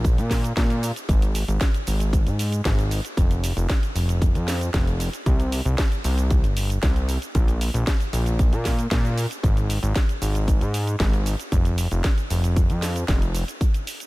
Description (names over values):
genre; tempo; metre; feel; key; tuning
nu-disco, nu disco; 115 BPM; 4/4; straight; unclear; A4 = 439 Hz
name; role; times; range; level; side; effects
fat analog bass; bass; 0.0-13.4 s; F1 to Bb2; -22 LUFS; equal; tube saturation
electronic kick drum; drums; 0.0-13.7 s; none; -21 LUFS; equal; none
house drum kit; drums; 0.0-14.1 s; hi-hat, shaker, snare drum; -30 LUFS; equal; none
room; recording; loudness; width
little or no reverb; none; -20 LUFS; side -20 dB against mid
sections
0.0-14.1 A section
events
none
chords
none